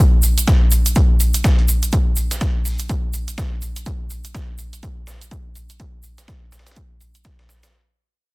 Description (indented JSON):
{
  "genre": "house",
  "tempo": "124 BPM",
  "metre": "4/4",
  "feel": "swing 59% on 16ths",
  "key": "none",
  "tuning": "none",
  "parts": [
    { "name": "dusty soul sampler-style drum kit", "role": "drums", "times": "0.2-7.7 s", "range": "hi-hat, snare drum", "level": "-32 LUFS", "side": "equal", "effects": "high-pass filter on hats, vintage 12-bit sampler grit, high-pass filter on snare" },
    { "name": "egg shaker", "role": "percussion", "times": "0.2-7.7 s", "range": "none", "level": "-25 LUFS", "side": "right 3 dB", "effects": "none" },
    { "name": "electronic hi-hat", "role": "drums", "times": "0.4-7.7 s", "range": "none", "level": "-28 LUFS", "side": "right 4 dB", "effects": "vintage 12-bit sampler grit" },
    { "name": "electronic kick drum", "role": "drums", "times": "0.5-7.4 s", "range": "none", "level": "-16 LUFS", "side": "equal", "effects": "vintage 12-bit sampler grit" }
  ],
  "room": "digital ambience",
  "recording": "dense, heavily limited modern master",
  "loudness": "-15 LUFS",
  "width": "side -24 dB against mid",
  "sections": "0.0-7.7 A section",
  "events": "fade-out 0.0-7.7",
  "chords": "none"
}